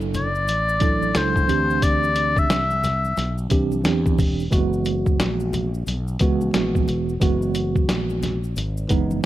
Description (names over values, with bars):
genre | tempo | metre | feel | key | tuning
hip hop, jazz-hop | 89 BPM | 4/4 | swing 63% on 16ths | unclear | A4 = 441 Hz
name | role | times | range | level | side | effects
mellow tine electric piano | accompaniment | 0.0-9.3 s | E3 to A4 | -23 LUFS | right 4 dB | medium stereo tremolo
fretless electric bass | bass | 0.0-9.2 s | E1 to E2 | -25 LUFS | equal | none
maracas and congas | percussion | 0.0-9.3 s | none | -35 LUFS | left 6 dB | none
lo-fi sampler-style drum kit | drums | 0.1-9.1 s | hi-hat, kick drum, snare drum | -22 LUFS | equal | none
clear oboe | melody | 0.2-3.4 s | C5 to E5 | -21 LUFS | left 2 dB | none
room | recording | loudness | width
light reverb | none | -19 LUFS | side -14 dB against mid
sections
0.0-9.3 A section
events
none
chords
0.0 E9sus4; 1.5 D9sus4; 4.5 F#9sus4